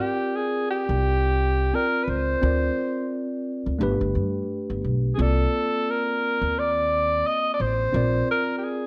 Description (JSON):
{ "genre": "hip hop", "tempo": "87 BPM", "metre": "4/4", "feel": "swing 57% on 16ths", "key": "unclear", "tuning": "A4 = 440 Hz", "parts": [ { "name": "breathy alto saxophone", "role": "melody", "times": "0.0-8.9 s", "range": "G4 to Eb5", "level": "-26 LUFS", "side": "equal", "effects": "slapback echo" }, { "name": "mellow tine electric piano", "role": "accompaniment", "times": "0.0-8.9 s", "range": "A3 to D5", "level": "-31 LUFS", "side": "equal", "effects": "none" }, { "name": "upright bass", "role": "bass", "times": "0.9-8.2 s", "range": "G1 to G2", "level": "-27 LUFS", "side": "equal", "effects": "none" } ], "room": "light reverb, small room ambience", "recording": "none", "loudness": "-24 LUFS", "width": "mono", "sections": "0.0-8.9 A section", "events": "none", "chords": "0.0 Abmaj9#11 (rootless); 2.4 Bbadd9/D; 3.8 G; 5.2 Cm7; 7.9 Bb7" }